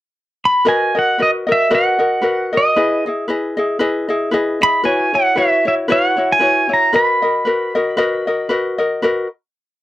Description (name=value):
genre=Hawaiian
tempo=115 BPM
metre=4/4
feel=swing 56% on 8ths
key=B major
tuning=A4 = 440 Hz
part: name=pedal steel guitar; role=melody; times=0.5-8.5 s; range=D#5 to B5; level=-14 LUFS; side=right 1 dB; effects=none
part: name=ukulele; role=accompaniment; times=0.7-9.3 s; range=E4 to D#5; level=-17 LUFS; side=left 2 dB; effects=none
room=light reverb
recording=dry, close 1970s-style studio recording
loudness=-14 LUFS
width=side -15 dB against mid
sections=0.0-0.7 pickup bar; 0.7-9.0 A section; 9.0-9.8 final chord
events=none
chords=0.0 N.C.; 0.7 Bmaj7; 2.8 Emaj7; 4.8 F#7sus4; 6.9 Bmaj7